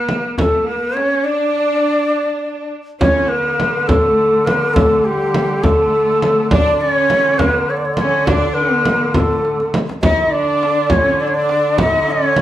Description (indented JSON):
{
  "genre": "Persian modal ensemble",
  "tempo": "68 BPM (dotted quarters)",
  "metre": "6/8",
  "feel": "straight",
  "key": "D dastgah chahargah",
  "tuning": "A4 = 440 Hz",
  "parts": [
    { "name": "bright reedy ney", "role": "melody", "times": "0.0-12.4 s", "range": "G4 to Eb5+46c", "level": "-15 LUFS", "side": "equal", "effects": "none" },
    { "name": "clear studio cello section", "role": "second line", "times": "0.0-12.4 s", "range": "G3 to Eb4+45c", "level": "-22 LUFS", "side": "equal", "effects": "none" },
    { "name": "frame drum", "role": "percussion", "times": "0.1-12.4 s", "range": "none", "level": "-19 LUFS", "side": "right 1 dB", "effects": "none" },
    { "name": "tombak", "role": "percussion", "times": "0.1-12.2 s", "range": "none", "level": "-21 LUFS", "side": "left 1 dB", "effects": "none" },
    { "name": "warm duduk", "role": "drone", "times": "3.0-12.4 s", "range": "D3", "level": "-24 LUFS", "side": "right 1 dB", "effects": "none" }
  ],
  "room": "wet large studio reverb, RT60 0.9 s",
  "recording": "band playing live in one room",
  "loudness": "-13 LUFS",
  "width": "side -13 dB against mid",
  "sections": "0.0-3.0 A section; 3.0-12.4 B section",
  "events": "drum fill 9.4-10.0",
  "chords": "none",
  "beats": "0.38 | 1.25 2.13 | 3.01 3.89 | 4.76 5.64 | 6.52 7.40 | 8.28 9.15 | 10.03 10.91 | 11.79"
}